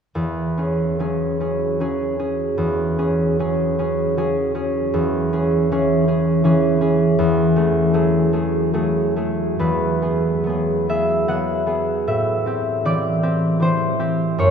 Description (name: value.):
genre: classical, solo harp piece.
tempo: 66-83 BPM.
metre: 3/4.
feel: rubato.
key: E mixolydian.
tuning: A4 = 440 Hz.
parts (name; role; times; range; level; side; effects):
concert harp; solo; 0.1-14.5 s; E2 to F#5; -17 LUFS; equal; none.
room: wet cathedral reverb, RT60 6.6 s.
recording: heard from further back in the room.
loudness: -17 LUFS.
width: side -7 dB against mid.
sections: 0.1-9.6 A section; 9.6-14.5 B section.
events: none.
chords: 0.1 E69; 4.9 E6; 7.2 F#m9/E; 9.6 Eadd9; 12.1 Am9.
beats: | 0.14 1.00 1.80 | 2.59 3.39 4.18 | 4.94 5.71 6.43 | 7.18 7.93 8.74 | 9.61 10.46 11.29 | 12.08 12.85 13.62 | 14.39.